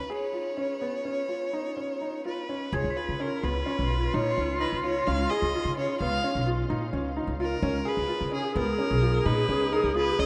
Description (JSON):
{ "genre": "contemporary instrumental, chamber music in an uneven meter", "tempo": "257 BPM (eighths)", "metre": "11/8", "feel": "straight", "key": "Db mixolydian", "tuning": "A4 = 440 Hz", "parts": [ { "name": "rich violin", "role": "melody", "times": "0.0-10.3 s", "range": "Ab4 to F5", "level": "-34 LUFS", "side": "equal", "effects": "none" }, { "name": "warm grand piano", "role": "arpeggios", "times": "0.1-10.3 s", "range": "Cb4 to Ab4", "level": "-34 LUFS", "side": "equal", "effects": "none" }, { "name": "mellow clarinet", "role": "second line", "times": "2.7-10.3 s", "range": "F4 to Ab4", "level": "-33 LUFS", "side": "equal", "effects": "none" }, { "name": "upright bass", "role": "bass", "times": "2.7-10.3 s", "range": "Cb2 to Db3", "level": "-32 LUFS", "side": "equal", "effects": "none" }, { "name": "celesta", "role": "texture", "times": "2.7-6.0 s", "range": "Ab6 to Cb7", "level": "-45 LUFS", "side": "equal", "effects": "none" } ], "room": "wet huge ambient reverb, RT60 7.9 s", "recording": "in a vast, echoing space, nothing above 10.4 kHz", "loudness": "-28 LUFS", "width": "mono", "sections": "0.0-2.7 A section; 2.7-10.3 B section", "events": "none", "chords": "0.0 Db7" }